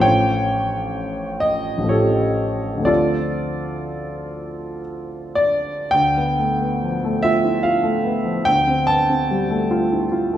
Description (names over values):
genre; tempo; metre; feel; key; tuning
classical, impressionist solo piano; 51-75 BPM; 3/4; rubato; D dorian; A4 = 436 Hz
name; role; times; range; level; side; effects
warm grand piano; solo; 0.0-10.4 s; A1 to A5; -18 LUFS; equal; none
room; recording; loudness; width
wet recital hall reverb, RT60 1.3 s; heard from further back in the room; -17 LUFS; side -11 dB against mid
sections
0.0-5.9 A section; 5.9-10.4 B section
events
none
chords
0.0 Aaug7; 2.9 Dm7; 5.9 Dm6; 8.5 Fadd9/D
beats
| 0.05 0.96 1.91 | 2.88 3.88 4.85 | 5.92 6.83 7.65 | 8.47 9.30 10.14